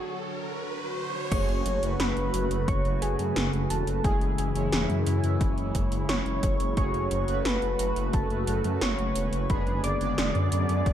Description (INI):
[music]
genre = synthwave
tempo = 88 BPM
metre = 4/4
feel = straight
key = F# minor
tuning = A4 = 438 Hz
[part]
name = phased analog pad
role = sustained chords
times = 0.0-10.9 s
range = C#3 to C#5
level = -32 LUFS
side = left 1 dB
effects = phaser, chorus, vintage 12-bit sampler grit, sidechain pumping
[part]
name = riser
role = sound effects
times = 0.0-1.3 s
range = none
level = -36 LUFS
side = right 2 dB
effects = none
[part]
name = warm velvety synth lead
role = melody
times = 1.3-10.9 s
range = G#4 to D5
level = -32 LUFS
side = equal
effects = chorus, ping-pong delay
[part]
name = FM electric piano with soft pad layer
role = second line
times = 1.3-10.9 s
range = G#5 to D6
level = -37 LUFS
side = right 1 dB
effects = chorus, ping-pong delay
[part]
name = analog synth brass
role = stabs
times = 1.3-10.9 s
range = G#3 to D5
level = -35 LUFS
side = right 3 dB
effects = chorus
[part]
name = wide detuned saw bass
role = bass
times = 1.3-10.9 s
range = E1 to F#2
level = -29 LUFS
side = equal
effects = chorus
[part]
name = 80s electronic pad drums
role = drums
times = 1.3-10.9 s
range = crash cymbal, hi-hat, snare drum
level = -32 LUFS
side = equal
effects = overdrive
[part]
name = electronic kick drum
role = drums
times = 1.3-10.9 s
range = none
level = -28 LUFS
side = equal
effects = overdrive
[sound]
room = light reverb, digital ambience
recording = dark, warm production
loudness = -24 LUFS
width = side -10 dB against mid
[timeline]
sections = 0.0-1.3 A section; 1.3-10.9 B section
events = break 0.0-1.3; riser 0.0-1.3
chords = 0.0 Bm (rootless); 1.3 F#madd9; 4.0 C#m; 6.8 F#madd9; 9.5 G#dim